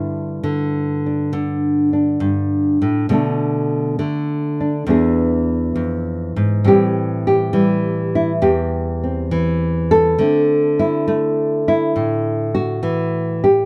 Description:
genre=solo jazz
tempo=68 BPM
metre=4/4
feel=swing 68% on 8ths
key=G major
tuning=A4 = 441 Hz
part: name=nylon-string guitar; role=solo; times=0.0-13.7 s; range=E2 to A4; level=-18 LUFS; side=equal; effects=none
room=light reverb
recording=dark, warm production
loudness=-18 LUFS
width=mono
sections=0.0-13.7 A section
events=none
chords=0.0 G5; 3.1 Bm7; 4.9 E7; 6.6 Am7; 10.2 D9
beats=0.42 1.31 2.20 | 3.09 3.98 4.87 5.75 | 6.64 7.53 8.41 9.30 | 10.18 11.07 11.95 12.84

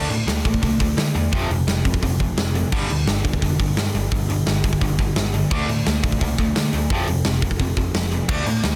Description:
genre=punk rock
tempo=172 BPM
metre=4/4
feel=straight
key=unclear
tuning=A4 = 444 Hz
part: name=crunchy overdriven guitar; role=riff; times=0.0-8.8 s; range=F2 to D4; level=-28 LUFS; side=equal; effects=none
part: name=distorted electric guitar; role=riff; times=0.0-8.8 s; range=F2 to D4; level=-29 LUFS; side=equal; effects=overdrive
part: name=overdriven picked electric bass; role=bass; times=0.0-8.8 s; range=F1 to D3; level=-26 LUFS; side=equal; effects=none
part: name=big rock drum kit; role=drums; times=0.1-8.7 s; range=crash cymbal, hi-hat, kick drum, snare drum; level=-25 LUFS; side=equal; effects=none
room=little or no reverb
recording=dense, heavily limited modern master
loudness=-21 LUFS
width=mono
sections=0.0-8.8 A section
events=none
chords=0.0 D5; 1.3 F5; 2.7 G5; 5.5 D5; 6.9 F5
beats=0.27 0.62 0.97 | 1.32 1.67 2.02 2.37 | 2.72 3.07 3.42 3.77 | 4.12 4.46 4.81 5.16 | 5.51 5.86 6.21 6.55 | 6.90 7.25 7.59 7.94 | 8.29 8.63

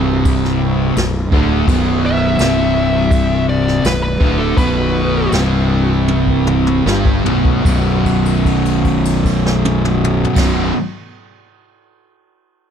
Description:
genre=stoner and doom metal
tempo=75-84 BPM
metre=4/4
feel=straight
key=B phrygian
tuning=A4 = 441 Hz
part: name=biting overdriven guitar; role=riff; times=0.0-10.7 s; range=B1 to G3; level=-22 LUFS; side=equal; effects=none
part: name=thick fuzz guitar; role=riff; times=0.0-10.7 s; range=B1 to G3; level=-19 LUFS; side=left 9 dB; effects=distortion
part: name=thick fuzz guitar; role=riff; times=0.0-10.7 s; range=B1 to G3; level=-20 LUFS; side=right 10 dB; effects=distortion
part: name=fuzz fingered electric bass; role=bass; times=0.0-10.7 s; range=B0 to G1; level=-19 LUFS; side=equal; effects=overdrive, tube saturation
part: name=jazz brush drum kit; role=drums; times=0.3-10.6 s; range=crash cymbal, kick drum, snare drum, toms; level=-19 LUFS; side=equal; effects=none
part: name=fuzz lead guitar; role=melody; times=2.1-5.3 s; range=A4 to E5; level=-21 LUFS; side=right 1 dB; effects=distortion, analog delay
room=light reverb, small room ambience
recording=dark, warm production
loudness=-12 LUFS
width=side -8 dB against mid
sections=0.0-7.6 A section; 7.6-10.8 B section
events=lead electric guitar solo 0.0-7.6; slowing down 1.7-7.6; drum fill 6.1-7.6; held note 7.6-10.4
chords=0.0 Bm; 7.6 B5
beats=0.26 0.97 | 1.68 2.40 3.12 3.84 | 4.58 5.32 6.08 6.86 | 7.65 8.44 9.24 10.04

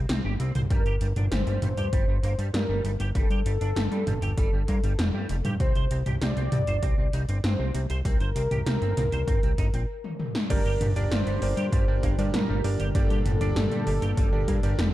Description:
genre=synthwave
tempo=98 BPM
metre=4/4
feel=straight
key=G minor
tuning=A4 = 441 Hz
part: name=fat analog bass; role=bass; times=0.0-14.9 s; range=F1 to G2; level=-27 LUFS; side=equal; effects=none
part: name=clean electric guitar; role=riff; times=0.1-14.9 s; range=G3 to C5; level=-38 LUFS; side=right 3 dB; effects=ensemble chorus, digital delay
part: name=80s electronic pad drums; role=drums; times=0.1-14.9 s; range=crash cymbal, hi-hat, snare drum, toms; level=-31 LUFS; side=equal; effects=gated reverb on snare and toms
part: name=mellow synth brass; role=melody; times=0.7-14.9 s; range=A4 to D5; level=-32 LUFS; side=equal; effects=chorus, digital delay
part: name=electronic kick drum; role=drums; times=0.7-14.6 s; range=none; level=-26 LUFS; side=equal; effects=none
part: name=phased analog pad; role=sustained chords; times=10.5-14.9 s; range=Bb2 to G4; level=-33 LUFS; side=equal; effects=phaser, chorus, sidechain pumping
part: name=bright electric grand piano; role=stabs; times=10.5-14.8 s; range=Bb3 to D5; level=-34 LUFS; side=right 3 dB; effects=none
room=little or no reverb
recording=dark, warm production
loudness=-23 LUFS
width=side -15 dB against mid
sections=0.0-10.5 A section; 10.5-14.9 B section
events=break 9.9-10.5; drum fill 10.0-10.5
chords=0.0 C5; 0.7 N.C.; 5.6 Csus2; 10.5 Gm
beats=0.09 | 0.70 1.32 1.93 2.54 | 3.15 3.77 4.38 4.99 | 5.60 6.21 6.83 7.44 | 8.05 8.66 9.28 9.89 | 10.50 11.11 11.72 12.34 | 12.95 13.56 14.17 14.79

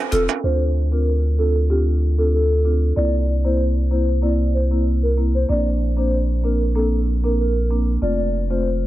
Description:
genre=dancehall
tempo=95 BPM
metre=4/4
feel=straight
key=D minor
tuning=A4 = 441 Hz
part: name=hollow clarinet-like synth lead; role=melody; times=0.1-8.7 s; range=G4 to D5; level=-24 LUFS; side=equal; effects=chorus, diffuse ambient delay
part: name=marimba with medium hard mallets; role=accompaniment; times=0.1-8.6 s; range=A3 to A4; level=-24 LUFS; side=left 1 dB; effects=none
part: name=punchy sub bass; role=bass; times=0.1-8.9 s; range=E1 to D2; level=-19 LUFS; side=equal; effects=none
room=light reverb, digital ambience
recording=low-pass filter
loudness=-17 LUFS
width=side -15 dB against mid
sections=0.4-8.9 A section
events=filter sweep 0.4-8.9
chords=0.4 Dm7; 3.0 C7; 5.5 Bbadd9; 8.0 F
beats=| 0.44 1.07 1.70 2.33 | 2.96 3.60 4.23 4.86 | 5.49 6.12 6.75 7.39 | 8.02 8.65

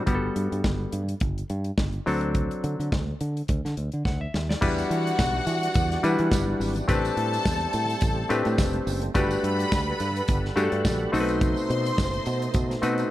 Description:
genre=disco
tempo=106 BPM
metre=4/4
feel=swing 56% on 16ths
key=E minor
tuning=A4 = 440 Hz
part: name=mellow clav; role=accompaniment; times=0.0-13.1 s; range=F#3 to F#5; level=-27 LUFS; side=left 2 dB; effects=none
part: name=fingered electric bass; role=bass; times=0.1-13.0 s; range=F1 to E3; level=-28 LUFS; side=equal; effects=none
part: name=modern studio drum kit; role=drums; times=0.1-13.1 s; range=crash cymbal, hi-hat, kick drum, snare drum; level=-27 LUFS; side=equal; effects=none
part: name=rich studio string section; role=second line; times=4.6-13.1 s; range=F#4 to C6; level=-30 LUFS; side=left 1 dB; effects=none
part: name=overdriven tonewheel organ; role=sustained chords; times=4.6-13.1 s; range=B2 to F#5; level=-33 LUFS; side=right 2 dB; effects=chorus vibrato, slow rotary speaker
part: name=tambourine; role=percussion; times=4.6-13.1 s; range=none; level=-43 LUFS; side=right 9 dB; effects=none
room=light reverb, small room ambience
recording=dark, warm production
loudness=-23 LUFS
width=side -14 dB against mid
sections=0.0-4.6 A section; 4.6-13.1 B section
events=drum fill 4.1-4.6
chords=0.1 Gmaj9; 2.1 D7; 4.6 Em9; 6.9 Am11; 9.2 Gmaj9; 11.1 B7b9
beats=| 0.07 0.64 1.21 1.78 | 2.35 2.92 3.48 4.05 | 4.62 5.19 5.75 6.32 | 6.89 7.45 8.02 8.59 | 9.15 9.72 10.28 10.85 | 11.41 11.98 12.54 13.11

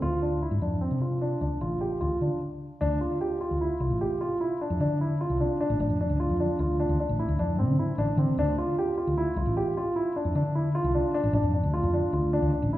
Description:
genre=contemporary instrumental, chamber music in an uneven meter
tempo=151 BPM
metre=7/4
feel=straight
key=D minor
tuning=A4 = 440 Hz
part: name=dark concert grand piano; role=arpeggios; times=0.0-12.8 s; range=C4 to G4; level=-27 LUFS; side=right 1 dB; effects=none
part: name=woody fretless electric bass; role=bass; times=0.0-12.8 s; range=A1 to D3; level=-27 LUFS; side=left 1 dB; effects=none
room=wet recital hall reverb, RT60 1.5 s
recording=heard from further back in the room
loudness=-24 LUFS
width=side -14 dB against mid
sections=0.0-2.8 A section; 2.8-12.8 B section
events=stop 2.4-2.8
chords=0.0 Dm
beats=| 0.01 0.41 0.81 1.21 1.61 2.01 2.41 | 2.81 3.21 3.61 4.00 4.40 4.80 5.20 | 5.59 5.99 6.39 6.79 7.18 7.58 7.97 | 8.37 8.77 9.16 9.56 9.95 10.35 10.74 | 11.14 11.54 11.93 12.33 12.72

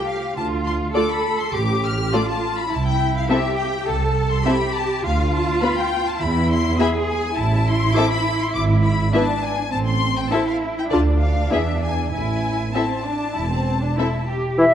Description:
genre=quick classical-period movement for symphony orchestra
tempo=102 BPM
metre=4/4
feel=straight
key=A minor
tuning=A4 = 440 Hz
part: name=rich studio violin section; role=melody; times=0.0-14.3 s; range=E5 to F6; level=-26 LUFS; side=left 6 dB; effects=none
part: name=warm studio cello section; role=bass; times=0.0-14.6 s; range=C4 to A4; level=-24 LUFS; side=right 2 dB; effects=none
part: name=rich chamber double bass section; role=bass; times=0.4-13.9 s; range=E1 to E2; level=-22 LUFS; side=right 2 dB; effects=none
part: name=rich chamber violin section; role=second line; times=0.9-14.1 s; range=G#4 to E5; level=-28 LUFS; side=left 5 dB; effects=none
part: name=warm chamber viola section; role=accompaniment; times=1.0-14.1 s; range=A3 to F4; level=-25 LUFS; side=left 1 dB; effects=none
part: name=bright clarinet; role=second line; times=14.6-14.7 s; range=E4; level=-21 LUFS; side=left 3 dB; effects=none
part: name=clear oboe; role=second line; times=14.6-14.7 s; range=E5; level=-26 LUFS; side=right 1 dB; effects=none
part: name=mellow hollow silver concert flute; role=second line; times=14.6-14.7 s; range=E5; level=-14 LUFS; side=left 1 dB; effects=none
part: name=warm bassoon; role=accompaniment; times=14.6-14.7 s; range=E3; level=-16 LUFS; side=left 1 dB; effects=none
room=moderate concert hall reverb, RT60 1.9 s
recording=dark, warm production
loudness=-18 LUFS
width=side -9 dB against mid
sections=0.0-14.6 A section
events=none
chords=0.4 Dm; 2.7 Am/C; 5.0 Bdim/D; 6.2 E; 7.4 Am; 8.5 E7/G#; 9.7 Am; 10.9 Dm; 11.5 E; 12.1 Am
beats=| 0.37 0.96 1.55 2.14 | 2.72 3.30 3.88 4.47 | 5.05 5.62 6.21 6.79 | 7.38 7.96 8.55 9.13 | 9.73 10.32 10.91 11.52 | 12.13 12.74 13.36 13.97 | 14.59

